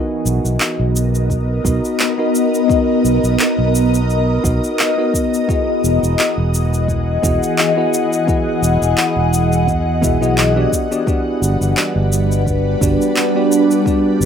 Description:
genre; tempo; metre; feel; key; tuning
sunset chillout; 86 BPM; 4/4; swing 55% on 16ths; B major; A4 = 439 Hz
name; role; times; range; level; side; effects
bell-like tine electric piano; accompaniment; 0.0-14.3 s; B3 to E5; -21 LUFS; right 1 dB; auto-pan, low-pass filter, ping-pong delay
ethereal airy pad; sustained chords; 0.0-14.3 s; E3 to F#5; -17 LUFS; left 1 dB; ensemble chorus, built-in reverb, phaser
fretless electric bass; bass; 0.3-14.3 s; E1 to E2; -17 LUFS; equal; ensemble chorus
electronic shaker and handclaps; drums; 0.3-14.3 s; none; -20 LUFS; equal; none
electronic kick drum; drums; 1.3-14.0 s; none; -20 LUFS; equal; none
room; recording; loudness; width
light reverb; rough home demo mix; -13 LUFS; side -8 dB against mid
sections
0.0-14.3 A section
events
none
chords
0.0 Bmaj7; 5.5 Emaj9; 10.7 Gmaj7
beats
0.60 1.30 2.00 | 2.70 3.40 4.09 4.79 | 5.49 6.19 6.88 7.58 | 8.28 8.98 9.68 10.37 | 11.07 11.77 12.47 13.16 | 13.86

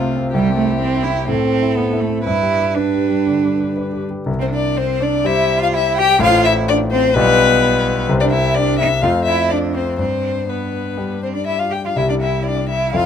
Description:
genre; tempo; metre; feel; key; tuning
quick classical-period movement for piano trio; 125 BPM; 4/4; rubato; C major; A4 = 440 Hz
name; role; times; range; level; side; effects
rich violin; melody; 0.0-13.1 s; F4 to G5; -19 LUFS; left 7 dB; none
rich cello; second line; 0.0-13.1 s; G3 to G4; -20 LUFS; right 8 dB; none
clear concert grand piano; accompaniment; 0.0-13.1 s; A1 to D5; -19 LUFS; left 2 dB; none
room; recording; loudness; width
little or no reverb; close, detailed microphones; -14 LUFS; side -8 dB against mid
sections
0.0-4.3 A section; 4.3-13.1 B section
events
none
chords
0.3 C; 1.3 Am; 2.3 G; 4.3 C5; 6.2 F/A; 7.1 G7/B; 8.1 C5; 9.0 F; 10.0 G; 12.0 C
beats
| 0.33 0.81 1.28 1.77 | 2.26 2.77 3.27 3.78 | 4.28 4.76 5.25 5.72 | 6.20 6.67 7.14 7.61 | 8.08 8.55 9.03 9.50 | 9.99 10.49 10.98 11.47 | 11.96 12.46 12.94

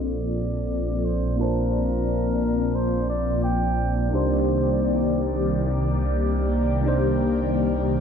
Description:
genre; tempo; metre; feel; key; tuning
drum and bass; free time; none; none; Bb major; A4 = 440 Hz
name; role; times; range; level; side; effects
warm flugelhorn; melody; 0.0-3.9 s; Bb4 to G5; -32 LUFS; right 2 dB; analog delay
mellow tine electric piano; accompaniment; 0.0-8.0 s; Bb3 to A5; -27 LUFS; right 1 dB; lush chorus, analog delay
airy breathy pad; sustained chords; 0.0-8.0 s; Eb3 to D5; -26 LUFS; left 2 dB; chorus, phaser
swelling detuned saw bass; bass; 0.0-8.0 s; Bb1 to C2; -25 LUFS; equal; none
room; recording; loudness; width
light reverb, digital ambience; low-pass filter, nothing above 10.5 kHz; -21 LUFS; side -7 dB against mid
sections
0.0-8.0 A section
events
filter sweep on analog synth pad 0.0-8.0; filter sweep 0.0-8.0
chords
0.0 Bbmaj9; 4.1 Cm9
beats
free time

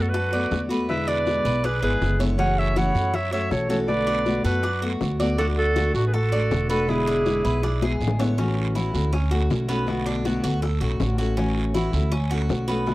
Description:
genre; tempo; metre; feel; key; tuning
latin, Cuban son and guajira; 160 BPM; 4/4; straight; unclear; A4 = 440 Hz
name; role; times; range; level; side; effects
clear clarinet; melody; 0.0-8.0 s; F#4 to F#5; -25 LUFS; right 2 dB; none
clear trumpet; second line; 0.0-8.0 s; D4 to C#5; -34 LUFS; left 3 dB; none
nylon-string guitar; accompaniment; 0.0-12.9 s; B2 to F#4; -26 LUFS; left 2 dB; none
Cuban tres; arpeggios; 0.0-12.9 s; B3 to D5; -31 LUFS; right 2 dB; none
upright bass; bass; 0.0-12.9 s; E1 to F#2; -25 LUFS; equal; none
bongos; percussion; 0.1-12.9 s; none; -31 LUFS; left 4 dB; none
guiro; percussion; 0.1-12.9 s; none; -39 LUFS; right 6 dB; none
room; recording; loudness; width
studio ambience; dry, close 1970s-style studio recording; -20 LUFS; side -18 dB against mid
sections
0.0-8.4 A section; 8.4-12.9 B section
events
drum fill 7.8-8.4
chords
0.0 D6; 0.9 E7; 2.4 F#m7; 3.9 Bm7; 5.4 D; 6.9 E7; 8.4 A6; 9.1 Dmaj7; 9.9 Bm7; 10.6 Dmaj7; 11.4 A6; 12.1 Dmaj7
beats
0.14 0.52 | 0.89 1.27 1.64 2.02 | 2.39 2.77 3.14 3.52 | 3.89 4.26 4.64 5.01 | 5.39 5.76 6.14 6.51 | 6.89 7.26 7.63 8.01 | 8.38 8.76 9.13 9.51 | 9.88 10.25 10.63 11.00 | 11.37 11.75 12.12 12.49 | 12.87

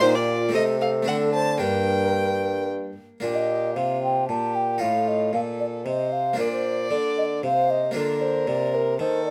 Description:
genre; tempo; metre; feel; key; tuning
classical, baroque-style sonata movement with continuo; 114 BPM; 3/4; straight; G minor, Bb major from 3.2 s; A4 = 440 Hz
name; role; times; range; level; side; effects
mellow hollow concert flute; melody; 0.0-9.3 s; Eb4 to A5; -27 LUFS; equal; none
rich violin; second line; 0.0-9.3 s; F4 to A5; -31 LUFS; equal; none
harpsichord; accompaniment; 0.0-9.3 s; G2 to G4; -33 LUFS; equal; none
warm bassoon; bass; 0.0-9.3 s; G2 to Eb3; -28 LUFS; equal; none
room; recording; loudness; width
light reverb; close, detailed microphones; -24 LUFS; mono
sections
0.0-3.2 A section; 3.2-9.3 A section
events
none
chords
0.0 Gm/Bb; 0.5 Adim/C; 1.1 D7(no3); 1.6 Gm; 3.2 Bb; 4.8 F7/A; 6.4 Bb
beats
| 0.01 0.54 1.07 | 1.61 2.15 2.69 | 3.23 3.76 4.29 | 4.81 5.34 5.86 | 6.39 6.91 7.44 | 7.96 8.48 9.00

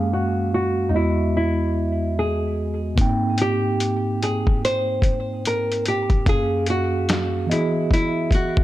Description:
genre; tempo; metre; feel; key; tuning
lo-fi hip hop; 73 BPM; 4/4; swing 60% on 16ths; unclear; A4 = 440 Hz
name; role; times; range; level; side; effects
nylon-string guitar; melody; 0.0-8.6 s; Eb4 to C5; -24 LUFS; equal; low-pass filter, tape echo
mellow tine electric piano; accompaniment; 0.0-8.6 s; E2 to G5; -22 LUFS; equal; medium stereo tremolo, low-pass filter
lo-fi sampler-style drum kit; drums; 3.0-8.6 s; hi-hat, kick drum, snare drum; -20 LUFS; left 1 dB; overdrive
room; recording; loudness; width
light reverb, studio ambience; dark, warm production; -19 LUFS; side -15 dB against mid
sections
0.0-8.6 A section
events
filter sweep 0.0-8.6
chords
0.0 Gbmaj9; 0.9 Emaj9; 3.0 Abmaj9; 6.3 Gbmaj9; 7.5 Emaj9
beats
0.51 1.33 2.15 | 2.98 3.80 4.62 5.44 | 6.26 7.09 7.91

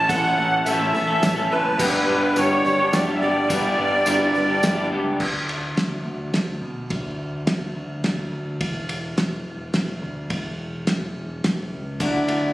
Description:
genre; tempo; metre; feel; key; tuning
folk rock and heartland rock; 106 BPM; 3/4; straight; unclear; A4 = 440 Hz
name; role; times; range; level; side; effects
musette accordion; melody; 0.0-4.9 s; B4 to A5; -21 LUFS; equal; slapback echo
picked steel-string acoustic guitar; accompaniment; 0.0-5.2, 12.0-12.5 s; G2 to A4; -28 LUFS; left 3 dB; none
electric guitar through a small old amp; riff; 0.0-5.2, 12.0-12.5 s; G2 to A4; -23 LUFS; right 1 dB; none
picked electric bass; bass; 0.0-12.5 s; E1 to B2; -29 LUFS; equal; none
warm grand piano; accompaniment; 0.1-5.0 s; B3 to C#5; -34 LUFS; right 1 dB; none
cloth-damped thuddy drum kit; drums; 0.1-12.4 s; crash cymbal, kick drum, ride cymbal, snare drum; -26 LUFS; equal; none
tambourine; percussion; 0.1-4.8 s; none; -36 LUFS; right 1 dB; none
room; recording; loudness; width
light reverb, studio reverb; recorded on a phone in the room, club reverb, compression; -20 LUFS; side -16 dB against mid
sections
0.0-5.2 A section; 5.2-12.5 B section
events
none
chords
0.0 A; 1.8 G; 5.2 N.C.; 12.0 Dadd9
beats
| 0.10 0.66 1.23 | 1.79 2.36 2.93 | 3.50 4.06 4.63 | 5.20 5.77 6.34 | 6.91 7.47 8.04 | 8.61 9.18 9.75 | 10.31 10.88 11.45 | 12.01

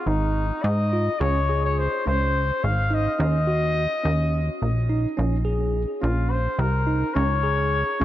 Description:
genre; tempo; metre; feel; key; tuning
progressive instrumental, band music in an uneven meter; 212 BPM (eighths); 7/8; straight; Db major; A4 = 440 Hz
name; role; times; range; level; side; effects
dark trumpet; melody; 0.0-8.0 s; Eb4 to F5; -26 LUFS; left 3 dB; diffuse ambient delay
tine electric piano; arpeggios; 0.1-8.0 s; Db4 to Ab4; -29 LUFS; right 3 dB; diffuse ambient delay
plucky analog bass; bass; 0.1-8.0 s; Ab1 to Ab2; -22 LUFS; equal; none
room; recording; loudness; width
moderate cathedral reverb, RT60 4.6 s; dreamy mix soaked in reverb; -20 LUFS; side -13 dB against mid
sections
0.0-8.0 A section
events
none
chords
0.0 Ab5; 1.2 Db5; 3.2 Ebm7; 5.2 Bbm9; 7.2 Db5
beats
0.07 0.36 0.64 0.93 | 1.21 1.49 1.78 2.06 2.34 2.63 2.91 | 3.19 3.48 3.76 4.04 4.33 4.61 4.89 | 5.18 5.46 5.74 6.03 6.31 6.59 6.88 | 7.16 7.44 7.73 8.01

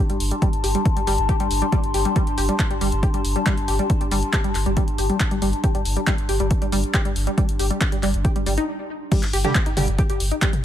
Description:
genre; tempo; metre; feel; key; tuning
driving peak-time techno; 138 BPM; 4/4; straight; unclear; A4 = 441 Hz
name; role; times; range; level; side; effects
tight sequenced synth; riff; 0.0-10.5 s; G3 to G4; -26 LUFS; left 1 dB; chorus, sidechain pumping, tape echo
warbly tape-like pad; texture; 0.0-8.7 s; D4 to C6; -28 LUFS; left 3 dB; chorus, built-in reverb, sidechain pumping
saturated sub bass; bass; 0.1-10.6 s; G1; -25 LUFS; equal; sidechain pumping, low-pass filter
punchy analog drum machine; drums; 0.1-10.6 s; crash cymbal, handclaps, hi-hat, toms; -27 LUFS; left 1 dB; overdrive
electronic kick drum; drums; 0.4-10.5 s; none; -21 LUFS; equal; overdrive
rave stab; stabs; 9.4-9.8 s; D3 to G4; -27 LUFS; right 4 dB; chorus, built-in reverb, sidechain pumping, tape echo
room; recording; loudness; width
light reverb; none; -19 LUFS; side -11 dB against mid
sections
0.0-9.1 A section; 9.1-10.6 B section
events
stop 8.7-9.1; drop 9.1-10.6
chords
0.0 G5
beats
| 0.42 0.85 1.29 1.73 | 2.16 2.59 3.03 3.46 | 3.90 4.33 4.77 5.20 | 5.64 6.07 6.51 6.94 | 7.38 7.81 8.25 8.68 | 9.12 9.55 9.99 10.42

